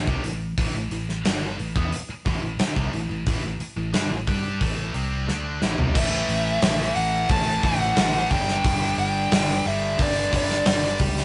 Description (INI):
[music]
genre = hard rock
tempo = 89 BPM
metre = 4/4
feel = straight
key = unclear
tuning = A4 = 440 Hz
[part]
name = distorted electric guitar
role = riff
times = 0.0-11.2 s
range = G2 to G4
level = -34 LUFS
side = equal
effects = overdrive
[part]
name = scooped high-gain guitar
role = riff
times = 0.0-11.2 s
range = G2 to G4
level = -35 LUFS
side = equal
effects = distortion
[part]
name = fingered electric bass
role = bass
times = 0.0-11.2 s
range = G1 to G2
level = -31 LUFS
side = equal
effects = none
[part]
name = gated 80s drum kit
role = drums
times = 0.1-11.2 s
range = crash cymbal, hi-hat, kick drum, snare drum, toms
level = -27 LUFS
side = equal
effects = none
[part]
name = nasal lead guitar with a parked wah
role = melody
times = 5.9-11.0 s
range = D5 to A5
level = -27 LUFS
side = equal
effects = overdrive
[part]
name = distorted electric guitar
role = riff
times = 5.9-11.2 s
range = G2 to A3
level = -33 LUFS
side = equal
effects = overdrive
[sound]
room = moderate stone room reverb, RT60 1.2 s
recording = rough rehearsal-room recording, nothing above 10.7 kHz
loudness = -24 LUFS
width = mono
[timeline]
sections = 0.0-6.0 A section; 6.0-11.2 B section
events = drum fill 5.3-6.0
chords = 0.0 A5; 8.3 G5